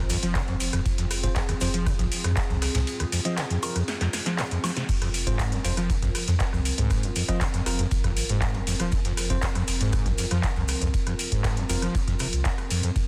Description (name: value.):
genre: acid house.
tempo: 119 BPM.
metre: 4/4.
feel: straight.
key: F minor.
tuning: A4 = 441 Hz.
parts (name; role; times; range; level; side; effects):
dark analog pad; sustained chords; 0.0-13.1 s; C4 to C5; -38 LUFS; equal; chorus, sidechain pumping.
warm sub bass; bass; 0.0-13.1 s; Eb1 to F2; -31 LUFS; equal; sidechain pumping.
overdriven acid bass; riff; 0.1-12.9 s; Eb2 to F3; -31 LUFS; equal; distortion, ensemble chorus, sidechain pumping, tape echo.
breakbeat sampler-style drum kit; drums; 0.1-13.1 s; ride cymbal, snare drum; -42 LUFS; equal; high-pass filter on cymbals, high-pass filter on snare.
electro analog drum machine; drums; 0.1-12.9 s; crash cymbal, handclaps, hi-hat, rim click, snare drum, woodblock; -33 LUFS; equal; none.
maracas; percussion; 0.1-13.1 s; none; -41 LUFS; equal; none.
electronic kick drum; drums; 0.4-13.1 s; none; -30 LUFS; equal; none.
bell-like tine electric piano; stabs; 1.2-11.8 s; C4 to Eb5; -39 LUFS; equal; tape echo.
room: light reverb, digital ambience.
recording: dense, heavily limited modern master.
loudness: -26 LUFS.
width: mono.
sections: 0.0-13.1 A section.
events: drum fill 3.9-4.9.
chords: 0.0 F5.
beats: 0.35 | 0.86 1.36 1.86 2.37 | 2.87 3.38 3.88 4.38 | 4.89 5.39 5.90 6.40 | 6.91 7.41 7.92 8.42 | 8.92 9.43 9.93 10.44 | 10.94 11.44 11.95 12.45 | 12.96.